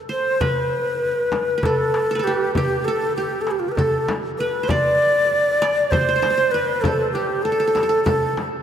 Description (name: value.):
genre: Turkish makam ensemble.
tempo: 196 BPM (eighths).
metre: 7/8.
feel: straight.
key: A makam ussak.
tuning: A4 = 440 Hz.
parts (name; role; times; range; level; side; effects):
breathy reedy ney; melody; 0.1-8.4 s; F4 to D5; -19 LUFS; equal; none.
qanun; second line; 0.1-8.6 s; G4 to D5; -26 LUFS; right 2 dB; none.
darbuka; percussion; 0.4-8.5 s; none; -29 LUFS; left 1 dB; none.
frame drum; percussion; 0.4-8.5 s; none; -28 LUFS; left 1 dB; none.
room: wet cathedral reverb, RT60 5.5 s.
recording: in a vast, echoing space.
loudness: -18 LUFS.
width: side -9 dB against mid.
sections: 0.4-8.6 A section.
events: break 0.0-0.4.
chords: none.